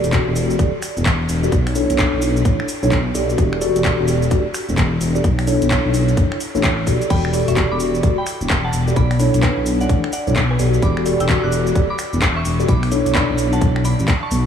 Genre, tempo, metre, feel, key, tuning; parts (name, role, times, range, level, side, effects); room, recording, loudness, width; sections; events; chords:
UK garage, two-step garage; 129 BPM; 4/4; swing 63% on 16ths; E dorian; A4 = 440 Hz
mellow tine electric piano; stabs; 0.0-13.8 s; D4 to D5; -21 LUFS; equal; medium stereo tremolo, tape echo
dark detuned saw bass; bass; 0.0-14.5 s; D1 to B1; -19 LUFS; left 1 dB
garage drum kit; drums; 0.0-14.4 s; cabasa, crash cymbal, finger snaps, handclaps, hi-hat; -24 LUFS; equal
electronic kick drum; drums; 0.1-14.2 s; -18 LUFS; equal
soft synth bell; melody; 7.1-14.4 s; B4 to F#6; -27 LUFS; right 1 dB; chorus, analog delay
light reverb; small room ambience; -15 LUFS; side -8 dB against mid
0.0-14.5 A section
0.0 Em11; 1.5 Bm11; 3.4 Em11; 5.2 Bm11; 7.1 Em11; 9.0 Bm11; 10.8 Em11; 12.7 Bm11